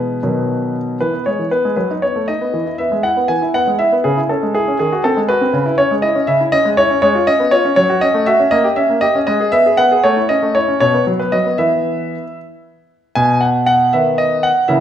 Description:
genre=classical-period piano sonatina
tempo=79 BPM (dotted quarters)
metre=6/8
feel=straight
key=E major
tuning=A4 = 442 Hz
part: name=clear concert grand piano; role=solo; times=0.0-14.8 s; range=B2 to G#5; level=-13 LUFS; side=equal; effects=none
room=moderate recital hall reverb, RT60 1.4 s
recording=minimal, uncompressed stereo recording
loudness=-13 LUFS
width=side -10 dB against mid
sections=0.0-1.0 A section; 1.0-13.2 B section; 13.2-14.8 C section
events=none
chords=0.2 B; 1.0 E; 1.8 B7/F#; 2.5 E; 4.0 C#m; 4.8 G#7/D#; 5.5 C#m; 7.0 C#7/G#; 7.8 F#m; 8.5 D#7b9/A#; 9.3 G#m; 10.0 A; 10.8 B5; 11.6 E5; 13.2 B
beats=0.23 | 1.01 1.78 | 2.53 3.29 | 4.04 4.79 | 5.54 6.28 | 7.03 7.78 | 8.53 9.28 | 10.04 10.81 | 11.60 12.39 | 13.17 13.93 | 14.69

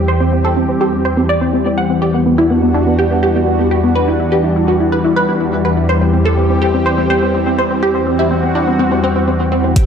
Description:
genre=progressive house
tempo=124 BPM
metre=4/4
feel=straight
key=unclear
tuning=A4 = 440 Hz
part: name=lush unison pad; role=sustained chords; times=0.0-9.9 s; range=E2 to G4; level=-14 LUFS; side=left 1 dB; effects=chorus, phaser, sidechain pumping
part: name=wide unison pluck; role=arpeggios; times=0.0-9.8 s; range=B3 to F#5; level=-15 LUFS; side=right 1 dB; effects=wide subtle chorus, sidechain pumping, diffuse ambient delay
part: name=electronic hi-hat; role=drums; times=9.8-9.9 s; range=none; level=-22 LUFS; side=equal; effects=overdrive, high-pass filter on cymbals, high-pass filter on hats
part: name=electronic kick drum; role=drums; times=9.8-9.9 s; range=none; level=-9 LUFS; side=equal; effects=none
room=wet plate reverb, RT60 1.5 s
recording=dreamy mix soaked in reverb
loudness=-12 LUFS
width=side -7 dB against mid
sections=0.0-9.8 A section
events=filter sweep on analog synth pad 0.0-9.8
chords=0.0 C/E; 2.0 Em7; 5.9 C/E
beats=| 0.08 0.57 1.05 1.54 | 2.02 2.50 2.99 3.47 | 3.96 4.44 4.92 5.41 | 5.89 6.37 6.86 7.34 | 7.83 8.31 8.79 9.28 | 9.76

